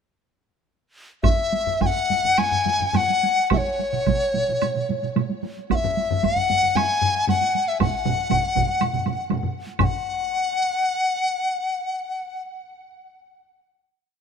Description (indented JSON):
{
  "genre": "japanese traditional, taiko drum ensemble",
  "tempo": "105-133 BPM",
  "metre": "4/4",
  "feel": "straight",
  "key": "unclear",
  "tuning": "A4 = 440 Hz",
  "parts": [
    { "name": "mellow hollow dizi", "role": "melody", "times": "1.2-12.4 s", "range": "C#5 to G#5", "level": "-22 LUFS", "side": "left 3 dB", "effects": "none" },
    { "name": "taiko ensemble", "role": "percussion", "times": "1.2-10.0 s", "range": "none", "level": "-27 LUFS", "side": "right 5 dB", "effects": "none" },
    { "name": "taiko ensemble", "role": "percussion", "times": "1.2-10.2 s", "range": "none", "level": "-27 LUFS", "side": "left 4 dB", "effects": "none" },
    { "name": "taiko ensemble", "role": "percussion", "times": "1.2-10.0 s", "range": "none", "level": "-26 LUFS", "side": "right 3 dB", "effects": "none" },
    { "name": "woodblock", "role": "percussion", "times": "1.2-10.0 s", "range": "none", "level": "-29 LUFS", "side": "right 6 dB", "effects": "none" },
    { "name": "taiko ensemble", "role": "percussion", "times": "3.5-10.2 s", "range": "none", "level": "-28 LUFS", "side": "right 10 dB", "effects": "none" }
  ],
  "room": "moderate huge ambient reverb, RT60 4.7 s",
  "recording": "minimal, uncompressed stereo recording",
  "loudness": "-20 LUFS",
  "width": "side -6 dB against mid",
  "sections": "1.2-9.8 A section; 9.8-11.7 final note",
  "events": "speeding up 1.2-11.7",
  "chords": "none"
}